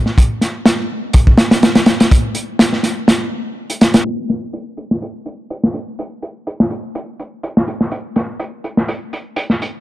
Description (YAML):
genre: breakbeat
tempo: 124 BPM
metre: 4/4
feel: swing 54% on 16ths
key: none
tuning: none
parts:
  - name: crunchy breakbeat drum kit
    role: drums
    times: 0.1-9.7 s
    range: hi-hat, kick drum, snare drum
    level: -13 LUFS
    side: equal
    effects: none
room: light reverb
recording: dark, warm production, low-pass filter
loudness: -13 LUFS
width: side -15 dB against mid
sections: 0.0-4.0 A section; 4.0-9.8 B section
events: filter sweep 4.0-9.8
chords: none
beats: | 0.18 0.66 1.15 1.63 | 2.12 2.60 3.08 3.57 | 4.05 4.53 5.02 5.50 | 5.99 6.47 6.95 7.44 | 7.92 8.40 8.89 9.37